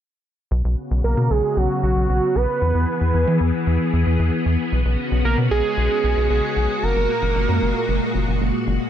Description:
pop; 114 BPM; 4/4; straight; A4 = 440 Hz
string machine, violins; sustained chords; 0.5-8.9 s; A#2 to G#4; -24 LUFS; left 1 dB; ensemble chorus, low-pass filter
rubbery square bass; bass; 0.5-8.8 s; F#1 to E3; -20 LUFS; equal
fat analog lead; melody; 1.0-8.4 s; F#4 to B4; -22 LUFS; right 2 dB; chorus, low-pass filter, ping-pong delay
light reverb; -18 LUFS; side -10 dB against mid
0.5-8.9 A section
filter sweep 0.5-8.9
0.5 Bsus2; 2.6 E; 4.7 Bsus2; 6.8 F#add9

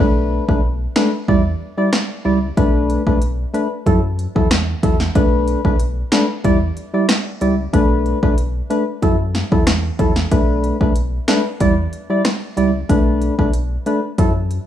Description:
dancehall; 93 BPM; 4/4; straight; B minor; A4 = 436 Hz
percussive organ stab; accompaniment; 0.0-14.3 s; F#3 to D5; -18 LUFS; left 1 dB; chorus
sub bass with octave; bass; 0.0-14.6 s; B1 to F#2; -21 LUFS; equal
deep house drum kit; drums; 0.5-14.7 s; finger snaps, hi-hat, kick drum, rim click, snare drum; -18 LUFS; equal; vintage 12-bit sampler grit
light reverb; rough home demo mix, studio reverb; -15 LUFS; side -10 dB against mid
0.0-14.7 A section
0.0 Bm7; 1.3 Em7; 2.6 Bm7; 3.9 F#m7; 5.2 Bm7; 6.4 Em7; 7.7 Bm7; 9.0 F#m7; 10.3 Bm7; 11.6 Em7; 12.9 Bm7

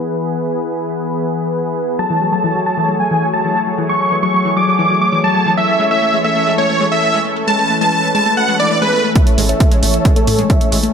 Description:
uplifting trance; 134 BPM; 4/4; straight; A major; A4 = 440 Hz
lush unison pad; sustained chords; 0.0-10.9 s; E3 to C#5; -19 LUFS; left 1 dB; chorus, sidechain pumping
dense compressed supersaw; melody; 2.0-10.8 s; A4 to D6; -15 LUFS; right 1 dB; cassette tape, sidechain pumping, low-pass filter, tape echo
wide unison pluck; arpeggios; 2.0-10.9 s; E3 to A3; -19 LUFS; left 3 dB; auto-pan, sidechain pumping, tape echo
electronic hi-hat; drums; 9.2-10.9 s; -22 LUFS; right 4 dB; high-pass filter on cymbals, high-pass filter on hats
electronic kick drum; drums; 9.2-10.6 s; -13 LUFS; equal
tight sequencer bass; bass; 9.4-10.9 s; A1 to A2; -18 LUFS; equal; sidechain pumping
moderate digital room reverb, RT60 1.4 s, digital ambience; low-pass filter; -12 LUFS; side -7 dB against mid
0.0-9.2 A section; 9.2-10.9 B section
filter sweep 0.0-9.2; build-up 9.2-10.9; filter sweep on supersaw synth 9.2-10.9
0.0 E; 2.0 F#madd9; 5.6 A

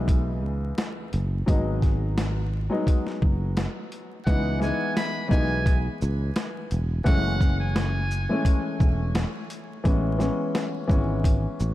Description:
hip hop, boom-bap hip-hop; 86 BPM; 4/4; swing 55% on 16ths; C# minor; A4 = 440 Hz
dark grand piano; accompaniment; 0.0-11.7 s; C#2 to D#4; -29 LUFS; left 2 dB; cassette tape, high-pass filter, low-pass filter
sustaining fretless electric bass; bass; 0.0-11.7 s; E1 to C#2; -26 LUFS; equal
boom bap sampler-style drum kit; drums; 0.1-11.7 s; hi-hat, kick drum, shaker, snare drum; -24 LUFS; equal
trumpet with metal mute; melody; 4.3-8.6 s; F#5 to B5; -32 LUFS; right 2 dB; high-pass filter, low-pass filter, ping-pong delay
light reverb, digital ambience; vinyl crackle; -22 LUFS; side -15 dB against mid
0.0-4.3 A section; 4.3-11.7 B section
0.0 C#m7; 1.5 G#m7; 4.3 C#m7; 7.1 F#m9; 9.9 Amaj7

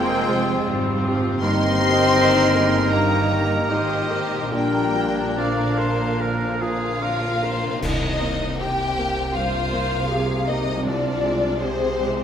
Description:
cinematic, emotional film score for orchestra; 71-82 BPM; 4/4; rubato; C minor from 7.8 s; A4 = 438 Hz
muted studio violin section; melody; 0.0-12.2 s; C5 to C6; -26 LUFS; left 3 dB
clear clarinet; second line; 0.0-7.4 s; C4 to Eb4; -31 LUFS; left 2 dB
clear oboe; second line; 0.0-7.8 s; Ab4 to D5; -29 LUFS; right 3 dB
flute section; second line; 0.0-7.4 s; G4 to Eb5; -27 LUFS; right 3 dB
muted chamber violin section; second line; 0.0-12.2 s; C4 to C5; -30 LUFS; left 1 dB
muted symphonic viola section; accompaniment; 0.0-12.2 s; D3 to C5; -28 LUFS; right 1 dB
warm baby grand piano; accompaniment; 0.0-12.2 s; C2 to G5; -28 LUFS; left 2 dB
mellow French horn section; sustained chords; 0.0-7.4 s; Eb3 to C4; -25 LUFS; left 3 dB
concert harp; arpeggios; 0.0-12.2 s; F2 to C5; -33 LUFS; left 6 dB
muted symphonic cello section; bass; 0.0-12.2 s; F2 to C3; -29 LUFS; right 3 dB
muted symphonic double bass section; bass; 0.0-12.2 s; F1 to C2; -29 LUFS; right 3 dB
cymbal swell, clash cymbals and concert bass drum; percussion; 4.5-9.3 s; -32 LUFS; right 1 dB
moderate scoring stage reverb, RT60 1.6 s; -19 LUFS; side -8 dB against mid
0.0-7.8 A section; 7.8-12.2 B section
band accent 7.8-8.6
0.0 Fmadd9; 1.4 Eb/G; 4.5 Bb; 7.8 Cm7; 10.8 Fmadd9/C

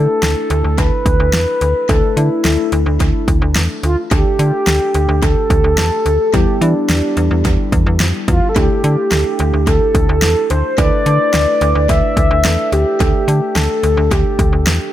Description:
synth-pop; 108 BPM; 4/4; straight; A4 = 440 Hz
mellow horn-like synth lead; melody; 0.0-14.7 s; D4 to E5; -17 LUFS; equal; chorus, tape echo
muted felt-like synth keys; accompaniment; 0.0-14.9 s; G3 to B4; -22 LUFS; right 1 dB; chorus, tape echo
slap-like FM bass; bass; 0.0-14.8 s; D2 to E3; -15 LUFS; equal
pop drum kit; drums; 0.2-14.8 s; hi-hat, kick drum, snare drum; -17 LUFS; equal; tape echo
light reverb, digital ambience; echo-heavy mix; -12 LUFS; side -12 dB against mid
0.0-14.9 A section
0.0 Dsus2; 4.1 Gsus2/D; 6.3 Em; 8.6 Dsus2; 13.0 Gsus2/D

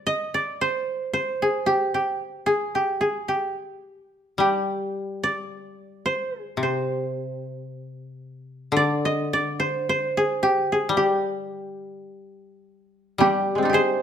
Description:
japanese traditional, Japanese chamber music; 55 BPM; 2/4; rubato; G miyako bushi; A4 = 440 Hz
koto; melody; 0.0-14.0 s; Ab3 to Eb5; -22 LUFS; right 1 dB
koto; accompaniment; 0.0-1.1, 4.4-14.0 s; C3 to G3; -27 LUFS; left 3 dB
taiko ensemble; percussion; 13.2-13.5 s; -24 LUFS; right 6 dB
moderate recital hall reverb, RT60 1.3 s; close, detailed microphones; -22 LUFS; side -8 dB against mid
0.0-13.2 A section

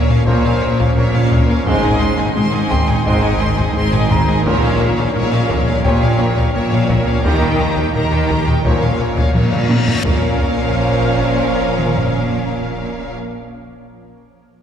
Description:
cinematic, hybrid orchestral and electronic film score; 86 BPM; 4/4; straight; Bb dorian; A4 = 443 Hz
warm symphonic violin section; melody; 0.0-13.1 s; Db5 to C6; -25 LUFS; left 1 dB
warm symphonic violin section; second line; 0.0-13.1 s; G4 to Eb5; -27 LUFS; left 4 dB
warm symphonic viola section; accompaniment; 0.0-13.1 s; Bb3 to G4; -25 LUFS; right 1 dB
granular cloud pad; sustained chords; 0.0-13.1 s; Eb3 to Eb5; -26 LUFS; left 1 dB
rubbery square bass; riff; 0.0-10.0 s; Eb2 to Bb3; -22 LUFS; left 2 dB
clear symphonic cello section; bass; 0.0-13.1 s; Ab2 to Eb3; -21 LUFS; right 1 dB
rich symphonic double bass section; bass; 0.0-13.1 s; Ab1 to Eb2; -21 LUFS; right 1 dB
bright concert grand piano; texture; 0.0-8.7 s; G3 to Bb5; -27 LUFS; equal; tape echo
taiko ensemble; drums; 0.1-12.1 s; -19 LUFS; equal
mellow French horn section; sustained chords; 0.3-13.1 s; Ab3 to Eb4; -28 LUFS; left 2 dB
warm trombone section; sustained chords; 0.3-13.1 s; Ab2 to Ab3; -27 LUFS; right 2 dB
reverse cymbal and sub drop; sound effects; 9.2-13.2 s; -26 LUFS; left 1 dB
wet concert hall reverb, RT60 2.4 s; heard from further back in the room; -13 LUFS; side -8 dB against mid
0.0-10.0 A section; 10.0-12.8 B section
reverse cymbal 9.2-10.0; drum fill 9.3-10.0; impact 10.0-12.8
0.0 Bbm; 1.7 Ab; 4.5 Bbm; 7.2 Eb; 8.6 Bbm

